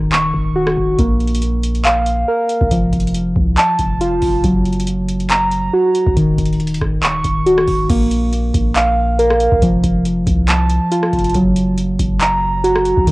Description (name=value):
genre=hip hop, trap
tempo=139 BPM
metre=4/4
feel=half-time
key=Bb harmonic minor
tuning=A4 = 439 Hz
part: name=muted felt-like synth keys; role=arpeggios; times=0.0-13.1 s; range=Eb3 to Db6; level=-15 LUFS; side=equal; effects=chorus, low-pass filter, cassette tape, analog delay
part: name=long sustained 808-style bass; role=bass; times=0.0-13.1 s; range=Db1 to C2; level=-20 LUFS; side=equal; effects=none
part: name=booming analog drum machine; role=drums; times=0.1-13.1 s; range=crash cymbal, handclaps, hi-hat, kick drum, rim click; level=-19 LUFS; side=equal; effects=cassette tape
room=light reverb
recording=home recording on cassette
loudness=-13 LUFS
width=side -20 dB against mid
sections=0.0-7.9 A section; 7.9-13.1 B section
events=break 0.0-1.0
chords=0.0 Ebm7; 1.0 Bb5; 2.7 F; 4.4 Gb; 6.2 Ebm7; 7.9 Bb5; 9.6 F; 11.3 Gb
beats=0.12 0.56 | 0.99 1.42 1.85 2.28 | 2.71 3.15 3.58 4.01 | 4.44 4.87 5.30 5.74 | 6.17 6.60 7.03 7.46 | 7.89 8.32 8.76 9.19 | 9.62 10.05 10.48 10.91 | 11.35 11.78 12.21 12.64 | 13.07